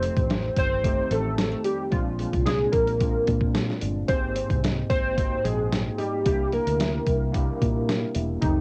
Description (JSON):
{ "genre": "indie pop, bedroom pop", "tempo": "111 BPM", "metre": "4/4", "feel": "straight", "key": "unclear", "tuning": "A4 = 440 Hz", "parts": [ { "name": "warbly lo-fi synth keys", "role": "melody", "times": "0.0-8.6 s", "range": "Eb4 to C5", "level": "-29 LUFS", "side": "equal", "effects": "ensemble chorus, analog delay" }, { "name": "nylon-string guitar", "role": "accompaniment", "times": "0.0-8.6 s", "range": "F2 to E4", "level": "-36 LUFS", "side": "equal", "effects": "analog chorus, vibrato effect, cassette tape" }, { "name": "overdriven tine electric piano", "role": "accompaniment", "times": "0.0-8.6 s", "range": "Ab3 to G5", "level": "-35 LUFS", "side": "equal", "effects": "medium tremolo, cassette tape" }, { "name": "fingered electric bass", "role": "bass", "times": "0.0-8.6 s", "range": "E1 to Bb2", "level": "-31 LUFS", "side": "equal", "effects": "none" }, { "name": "dusty soul sampler-style drum kit", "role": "drums", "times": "0.0-8.5 s", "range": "hi-hat, kick drum, snare drum", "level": "-29 LUFS", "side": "equal", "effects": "cassette tape" } ], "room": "light reverb", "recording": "home recording on cassette", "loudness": "-25 LUFS", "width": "mono", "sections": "0.0-8.6 A section", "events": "none", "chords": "0.0 F7; 1.9 Bb7; 4.1 Abmaj7; 6.3 C7", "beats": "0.30 0.84 1.38 | 1.93 2.47 3.01 3.55 | 4.09 4.63 5.17 5.71 | 6.25 6.79 7.33 7.88 | 8.42" }